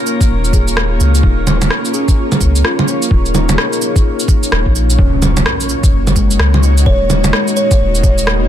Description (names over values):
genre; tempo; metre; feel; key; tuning
future garage; 128 BPM; 4/4; swing 62% on 16ths; Eb minor; A4 = 440 Hz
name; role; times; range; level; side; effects
muted felt-like synth keys; accompaniment; 0.0-8.5 s; Ab3 to Bb4; -22 LUFS; left 3 dB; chorus, sidechain pumping, dub echo
granular cloud pad; sustained chords; 0.0-8.5 s; Bb3 to Db5; -20 LUFS; equal; built-in reverb, sidechain pumping
drifting glass-harmonics texture; texture; 0.0-5.0 s; Bb4; -29 LUFS; right 3 dB; chorus, built-in reverb
electronic cabasa, shaker, rim click and bongos; drums; 0.1-8.4 s; none; -16 LUFS; right 2 dB; soft clipping on snare
electronic kick drum; drums; 0.2-8.2 s; none; -12 LUFS; equal; none
soft dub sub bass; bass; 0.3-8.5 s; Eb1 to Db2; -14 LUFS; equal; sidechain pumping
impact; sound effects; 5.0-6.9 s; none; -22 LUFS; equal; none
buzzing kalimba; melody; 6.9-8.2 s; Db5; -17 LUFS; right 2 dB; ping-pong delay
room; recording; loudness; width
light reverb, digital ambience; dense, heavily limited modern master; -10 LUFS; side -11 dB against mid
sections
0.0-5.0 A section; 5.0-8.5 B section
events
impact 5.0-6.9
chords
0.0 Bbm/Eb; 5.0 Ebm7